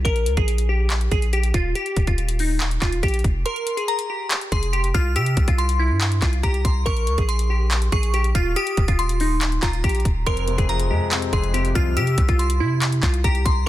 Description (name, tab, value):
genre	hip hop, trap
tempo	141 BPM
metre	4/4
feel	half-time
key	F minor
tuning	A4 = 439 Hz
part	glassy digital keys	melody	0.0-13.7 s	Eb4 to Bb4	-26 LUFS	equal	chorus, ping-pong delay
part	long sustained 808-style bass	bass	0.0-13.7 s	Eb1 to C3	-21 LUFS	equal	none
part	trap drum kit	drums	0.1-13.6 s	handclaps, hi-hat, kick drum	-22 LUFS	equal	none
part	glassy synth bell	second line	3.5-13.7 s	Bb5 to F6	-28 LUFS	equal	chorus, phaser, ping-pong delay
part	warm concert grand piano	accompaniment	10.3-12.0 s	F2 to C4	-28 LUFS	left 4 dB	none
room	digital ambience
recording	dense, heavily limited modern master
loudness	-18 LUFS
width	side -14 dB against mid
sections	0.0-13.7 A section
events	break 3.5-4.3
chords	0.1 N.C.; 1.8 Eb5; 3.5 F5; 5.2 C; 6.9 Bbm; 8.6 Eb5; 10.3 Fm; 12.0 C